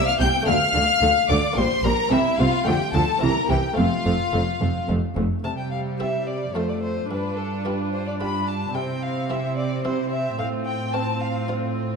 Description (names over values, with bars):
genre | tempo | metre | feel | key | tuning
classical, baroque-style concerto movement with solo episodes | 109 BPM | 3/4 | straight | F major, C major from 5.4 s | A4 = 440 Hz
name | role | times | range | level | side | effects
clear chamber violin section | melody | 0.0-12.0 s | E4 to G6 | -31 LUFS | left 4 dB | none
rich violin | melody | 0.0-11.5 s | A4 to G6 | -29 LUFS | left 2 dB | none
rich studio violin section | second line | 0.0-11.5 s | E4 to B5 | -26 LUFS | left 4 dB | none
buff-stop harpsichord | accompaniment | 0.0-12.0 s | F2 to C5 | -30 LUFS | equal | none
rich studio viola section | accompaniment | 0.2-12.0 s | E3 to D4 | -29 LUFS | right 1 dB | none
rich chamber double bass section | bass | 0.2-5.2 s | F1 to D2 | -26 LUFS | right 2 dB | none
rich studio cello section | bass | 0.2-12.0 s | F2 to D3 | -27 LUFS | right 3 dB | none
room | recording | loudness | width
wet recital hall reverb, RT60 1.5 s | dark, warm production | -20 LUFS | side -5 dB against mid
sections
0.0-5.4 A section; 5.4-12.0 B section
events
none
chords
0.5 Dm; 1.6 Gm/Bb; 2.1 C; 2.7 Dm; 3.2 C7; 3.8 F; 5.4 C; 6.5 F; 7.1 G5; 8.7 C; 10.4 F/A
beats
| 0.47 1.02 1.57 | 2.12 2.66 3.22 | 3.77 4.33 4.89 | 5.44 6.00 6.55 | 7.10 7.65 8.20 | 8.74 9.29 9.84 | 10.39 10.94 11.48